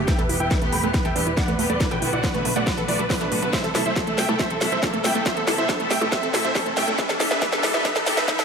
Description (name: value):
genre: uplifting trance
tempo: 139 BPM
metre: 4/4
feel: straight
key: A dorian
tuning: A4 = 439 Hz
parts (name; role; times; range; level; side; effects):
- supersaw chords; melody; 0.0-8.4 s; D4 to B5; -25 LUFS; right 1 dB; sidechain pumping, low-pass filter, digital delay
- bright baby grand piano; second line; 0.0-8.4 s; A4 to B5; -32 LUFS; right 1 dB; none
- bright symphonic string section; sustained chords; 0.0-8.4 s; C3 to G4; -29 LUFS; equal; sidechain pumping
- plucky analog bass; bass; 0.0-8.4 s; E1 to C2; -32 LUFS; equal; sidechain pumping
- riser; sound effects; 1.6-8.4 s; none; -33 LUFS; equal; none
- wide unison pluck; arpeggios; 0.1-8.4 s; A2 to A4; -29 LUFS; right 3 dB; sidechain pumping, digital delay
- electronic kick drum; drums; 0.1-8.4 s; none; -26 LUFS; equal; overdrive
- techno drum kit; drums; 0.1-8.4 s; hi-hat, percussion blips, snare drum; -25 LUFS; equal; overdrive, high-pass filter on snare, high-pass filter on hats, high-pass filter on perc
room: moderate lush hall reverb, RT60 1.9 s, digital ambience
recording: high-pass filter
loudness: -19 LUFS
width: side -6 dB against mid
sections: 0.0-8.4 A section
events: build-up 0.0-8.4; drum fill 0.0-8.4; filter sweep on supersaw synth 0.0-8.4; filter sweep 0.0-8.4; riser 1.6-8.4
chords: 0.1 Em; 1.8 Bm7; 3.5 Am/C; 7.0 Em